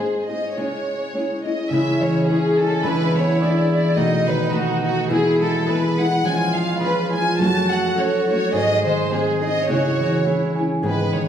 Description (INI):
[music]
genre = mexican folk, mariachi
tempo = 105 BPM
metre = 2/4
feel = swing 54% on 8ths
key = C# minor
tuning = A4 = 440 Hz
[part]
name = rich studio violin section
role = melody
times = 0.0-11.3 s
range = F#4 to A5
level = -22 LUFS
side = equal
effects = none
[part]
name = nylon-string guitar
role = accompaniment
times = 0.0-11.3 s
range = E2 to G#4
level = -24 LUFS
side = left 1 dB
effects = none
[part]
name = warm trumpet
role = second line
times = 1.7-10.8 s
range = C#4 to G#4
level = -28 LUFS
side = right 3 dB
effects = none
[part]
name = concert harp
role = arpeggios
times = 1.7-11.3 s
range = G#2 to A6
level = -21 LUFS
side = right 1 dB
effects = none
[sound]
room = wet recital hall reverb, RT60 1.8 s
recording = heard from further back in the room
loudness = -17 LUFS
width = side -9 dB against mid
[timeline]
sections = 0.0-1.7 A section; 1.7-10.8 A section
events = none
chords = 0.0 G#; 0.5 C#m; 2.8 E7; 4.0 B7; 5.1 E; 6.2 C#/E#; 7.4 F#m; 8.5 G#; 9.7 C#m